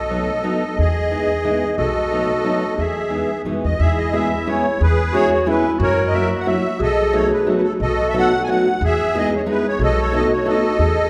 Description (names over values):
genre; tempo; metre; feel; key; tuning
musette waltz; 180 BPM; 3/4; swing 54% on 8ths, rubato; E major; A4 = 438 Hz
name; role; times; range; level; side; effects
musette accordion; melody; 0.0-11.1 s; G#4 to G#5; -23 LUFS; equal; none
warm clarinet; second line; 0.0-11.1 s; E4 to G#4; -26 LUFS; equal; none
upright bass; bass; 0.0-11.1 s; B1 to F#2; -25 LUFS; equal; none
fingerpicked steel-string acoustic guitar; accompaniment; 0.1-10.6 s; E3 to A4; -24 LUFS; equal; none
room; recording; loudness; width
wet recital hall reverb, RT60 1.7 s; heard from further back in the room; -18 LUFS; mono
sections
0.0-3.8 A section; 3.8-11.1 A section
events
none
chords
0.0 B7; 0.8 Emaj7; 1.8 B7; 2.8 Emaj7; 3.8 E6; 5.8 F#7; 6.8 B7; 8.8 Emaj7; 9.8 B7